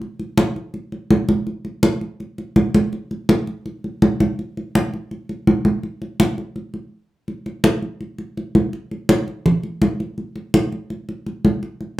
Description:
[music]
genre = latin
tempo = 165 BPM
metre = 4/4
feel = straight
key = none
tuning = none
[part]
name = congas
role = percussion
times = 0.0-12.0 s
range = none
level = -17 LUFS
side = equal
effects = none
[sound]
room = wet studio ambience, RT60 0.5 s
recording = heard from further back in the room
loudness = -18 LUFS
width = side -16 dB against mid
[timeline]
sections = 0.0-7.3 A section; 7.3-12.0 B section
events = break 6.9-7.3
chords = none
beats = | 0.01 0.37 0.74 1.10 | 1.47 1.83 2.20 2.56 | 2.93 3.29 3.65 4.02 | 4.38 4.74 5.11 5.47 | 5.83 6.20 6.56 6.92 | 7.28 7.64 8.01 8.37 | 8.73 9.09 9.45 9.81 | 10.18 10.54 10.90 11.26 | 11.62 11.99

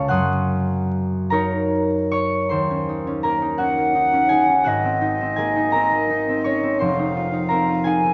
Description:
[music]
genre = classical, impressionist duo for flute and harp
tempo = 45-57 BPM (dotted quarters)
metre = 6/8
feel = rubato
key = unclear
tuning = A4 = 441 Hz
[part]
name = concert harp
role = accompaniment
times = 0.0-8.1 s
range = F1 to Gb6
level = -22 LUFS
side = equal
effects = none
[part]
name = silver concert flute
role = melody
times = 3.6-8.1 s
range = Eb5 to Ab5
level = -24 LUFS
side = equal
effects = none
[sound]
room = moderate recital hall reverb, RT60 1.9 s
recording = dark, warm production, vinyl crackle, nothing above 7.6 kHz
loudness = -20 LUFS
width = mono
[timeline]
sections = 0.0-2.5 A section; 2.5-8.1 B section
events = none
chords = 0.1 Gb6; 2.5 Ebm7; 4.7 Ab9; 6.8 Fm7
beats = | 0.10 1.32 | 2.52 3.59 | 4.66 5.74 | 6.82 7.88

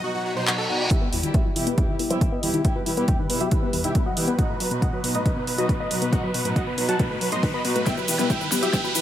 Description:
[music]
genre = uplifting trance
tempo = 138 BPM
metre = 4/4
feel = straight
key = E harmonic minor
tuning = A4 = 439 Hz
[part]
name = big supersaw lead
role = melody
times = 0.0-9.0 s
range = E4 to C6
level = -30 LUFS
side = equal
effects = cassette tape, sidechain pumping, low-pass filter, dub echo
[part]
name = dark chamber string section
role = sustained chords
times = 0.0-8.9 s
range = B2 to G4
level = -29 LUFS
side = equal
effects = sidechain pumping
[part]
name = reverse cymbal and riser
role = sound effects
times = 0.2-9.0 s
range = none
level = -32 LUFS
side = right 1 dB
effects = none
[part]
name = big-room dance drum kit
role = drums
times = 0.5-9.0 s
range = handclaps, hi-hat, shaker, snare drum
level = -28 LUFS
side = equal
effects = overdrive
[part]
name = clear grand piano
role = second line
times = 0.9-9.0 s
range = E4 to C6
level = -32 LUFS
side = equal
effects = sidechain pumping, low-pass filter, dub echo
[part]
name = tight sequenced synth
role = arpeggios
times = 0.9-9.0 s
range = E2 to B3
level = -28 LUFS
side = left 2 dB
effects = chorus, sidechain pumping
[part]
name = electronic kick drum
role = drums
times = 0.9-8.8 s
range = none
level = -23 LUFS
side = equal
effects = none
[sound]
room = light reverb, digital ambience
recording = high-pass filter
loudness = -20 LUFS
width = side -11 dB against mid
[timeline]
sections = 0.9-9.0 A section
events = reverse cymbal 0.2-0.9; build-up 0.9-9.0; riser 0.9-9.0; filter sweep on supersaw synth 0.9-9.0; filter sweep on synth arpeggio sound 0.9-9.0; filter sweep on grand piano 0.9-9.0; filter sweep 0.9-9.0; drum fill 7.9-9.0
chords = 0.0 B; 0.9 Em; 4.4 B; 7.9 Em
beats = 0.04 0.47 | 0.91 1.34 1.78 2.21 | 2.65 3.08 3.52 3.95 | 4.39 4.82 5.26 5.69 | 6.13 6.56 7.00 7.43 | 7.87 8.30 8.73

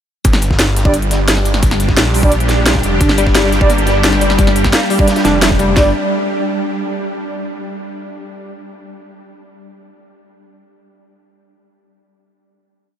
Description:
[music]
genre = dark technical drum and bass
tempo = 174 BPM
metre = 4/4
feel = straight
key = G minor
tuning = A4 = 441 Hz
[part]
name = swarming drone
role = sustained chords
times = 0.7-5.9 s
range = G3 to G4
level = -19 LUFS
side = right 1 dB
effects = built-in reverb, analog chorus, sidechain pumping
[part]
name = snarling distorted saw bass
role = bass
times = 0.2-5.9 s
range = F1 to Bb1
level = -16 LUFS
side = equal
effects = distortion, overdrive
[part]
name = crunchy breakbeat drum kit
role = drums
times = 0.2-5.7 s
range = hi-hat, snare drum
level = -28 LUFS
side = equal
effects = none
[part]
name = drum and bass drum kit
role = drums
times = 0.2-5.8 s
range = kick drum, snare drum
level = -14 LUFS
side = equal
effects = small room ambience
[part]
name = drum and bass drum kit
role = drums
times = 0.2-5.7 s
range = hi-hat, snare drum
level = -18 LUFS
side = equal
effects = small room ambience
[part]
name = mellow brass ensemble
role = stabs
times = 0.9-5.9 s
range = G3 to D5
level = -21 LUFS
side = right 2 dB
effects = tape echo
[part]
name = analog pluck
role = arpeggios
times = 3.0-5.9 s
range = G3 to D4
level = -20 LUFS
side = left 4 dB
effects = chorus, sidechain pumping, tape echo
[sound]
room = moderate huge ambient reverb, RT60 7.2 s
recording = dreamy mix soaked in reverb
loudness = -11 LUFS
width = side -10 dB against mid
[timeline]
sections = 0.2-5.8 drop; 5.8-7.1 final chord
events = drop 0.2-5.8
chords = 0.2 G5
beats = | 0.25 0.59 0.94 1.28 | 1.63 1.97 2.32 2.66 | 3.01 3.35 3.70 4.04 | 4.39 4.73 5.08 5.42 | 5.77

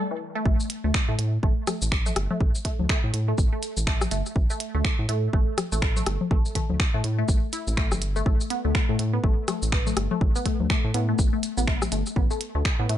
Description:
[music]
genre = minimal techno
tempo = 123 BPM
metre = 4/4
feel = swing 59% on 16ths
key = unclear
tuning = A4 = 439 Hz
[part]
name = resonant blip pluck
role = riff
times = 0.0-13.0 s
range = E3 to E4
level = -30 LUFS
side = left 2 dB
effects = phaser, sidechain pumping, dub echo
[part]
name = rubbery square bass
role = bass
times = 0.5-13.0 s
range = G1 to A2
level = -26 LUFS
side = equal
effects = tube saturation, sidechain pumping
[part]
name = electronic kick drum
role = drums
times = 0.5-12.8 s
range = none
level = -24 LUFS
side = equal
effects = none
[part]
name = minimal click drum kit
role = drums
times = 0.6-13.0 s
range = finger snaps, hi-hat, shaker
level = -30 LUFS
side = right 1 dB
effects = none
[part]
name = electronic rim click and congas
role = percussion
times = 1.7-11.9 s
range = none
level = -30 LUFS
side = left 5 dB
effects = ping-pong delay
[sound]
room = little or no reverb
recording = nothing above 11.0 kHz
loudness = -22 LUFS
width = side -11 dB against mid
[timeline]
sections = 0.5-13.0 A section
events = break 0.0-0.5; drop 0.5-13.0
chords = none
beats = | 0.46 0.94 1.43 1.92 | 2.41 2.89 3.38 3.87 | 4.36 4.85 5.33 5.82 | 6.31 6.80 7.29 7.77 | 8.26 8.75 9.24 9.72 | 10.21 10.70 11.19 11.68 | 12.16 12.65

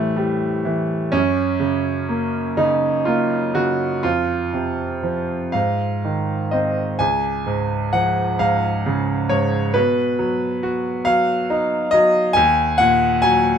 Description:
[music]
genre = classical, lyrical solo piano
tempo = 39-46 BPM (dotted quarters)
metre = 6/8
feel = rubato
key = Db mixolydian from 7.0 s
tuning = A4 = 437 Hz
[part]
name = bright grand piano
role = solo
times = 0.0-13.6 s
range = Db2 to Ab5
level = -17 LUFS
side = equal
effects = none
[sound]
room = light reverb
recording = minimal, uncompressed stereo recording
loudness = -17 LUFS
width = side -8 dB against mid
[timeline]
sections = 0.0-7.0 A section; 7.0-13.6 B section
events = none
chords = 0.0 Am7; 1.1 Gb; 4.0 F5; 5.5 Ab; 7.0 Db; 9.8 Cb; 12.4 Ebm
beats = | 1.13 2.58 | 4.04 5.54 | 7.00 8.40 | 9.76 11.06 | 12.37

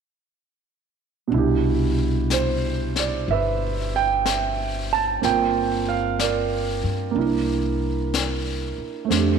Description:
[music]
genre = jazz ballad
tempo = 62 BPM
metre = 4/4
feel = swing 67% on 8ths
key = C major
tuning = A4 = 440 Hz
[part]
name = warm concert grand piano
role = accompaniment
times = 1.3-9.4 s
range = B2 to A5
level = -22 LUFS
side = right 8 dB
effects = none
[part]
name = upright bass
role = bass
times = 1.3-9.4 s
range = G1 to G2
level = -26 LUFS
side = left 3 dB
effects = none
[part]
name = jazz brush drum kit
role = drums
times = 1.3-9.4 s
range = brushed snare drum, hi-hat, snare drum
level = -30 LUFS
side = left 8 dB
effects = none
[sound]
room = moderate echo chamber reverb, RT60 2.7 s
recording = 1960s-style stereo with parts hard left and right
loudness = -20 LUFS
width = side -6 dB against mid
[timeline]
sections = 1.3-9.4 A section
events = none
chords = 1.3 Cmaj9; 5.2 Gm7; 7.2 C9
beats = | 1.32 2.30 3.28 4.25 | 5.22 6.19 7.16 8.13 | 9.10

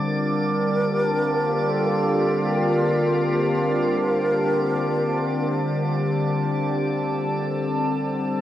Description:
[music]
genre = ambient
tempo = free time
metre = none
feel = none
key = Bb major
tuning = A4 = 444 Hz
[part]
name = evolving wavetable pad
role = sustained chords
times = 0.0-8.4 s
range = D3 to A5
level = -23 LUFS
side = left 1 dB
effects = chorus, built-in reverb, phaser
[part]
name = organ-like drone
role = drone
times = 0.9-6.9 s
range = Bb3 to F4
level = -29 LUFS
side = equal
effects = ensemble chorus, built-in reverb
[part]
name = drifting glass-harmonics texture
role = texture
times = 0.0-8.4 s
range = A4 to D6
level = -30 LUFS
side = right 2 dB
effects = chorus, built-in reverb
[part]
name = wooden-headed alto flute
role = melody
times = 0.1-5.9 s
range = A4 to Bb4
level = -26 LUFS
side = right 1 dB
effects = none
[sound]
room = wet huge ambient reverb, RT60 9.3 s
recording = worn, warbling old tape, cassette tape, warbly pitch drift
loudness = -20 LUFS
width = side -12 dB against mid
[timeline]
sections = 0.0-6.8 A section; 6.8-8.4 B section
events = none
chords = 0.0 Bbmaj7; 6.8 Bbmaj7 (rootless)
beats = free time

